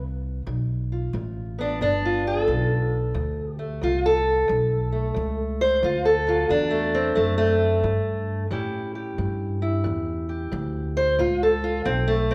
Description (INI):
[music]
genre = acoustic country blues, solo or duo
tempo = 90 BPM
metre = 4/4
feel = swing 66% on 8ths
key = unclear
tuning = A4 = 440 Hz
[part]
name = fingerpicked steel-string acoustic guitar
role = melody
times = 0.0-12.3 s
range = D2 to C5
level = -25 LUFS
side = equal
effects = none
[part]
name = upright bass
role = bass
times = 0.0-12.3 s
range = G1 to A2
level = -29 LUFS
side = equal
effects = none
[sound]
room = moderate scoring stage reverb, RT60 1.8 s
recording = recorded in a church or concert hall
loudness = -24 LUFS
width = mono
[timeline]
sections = 0.0-12.3 A section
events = none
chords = 0.0 G7; 3.1 D7; 8.5 A7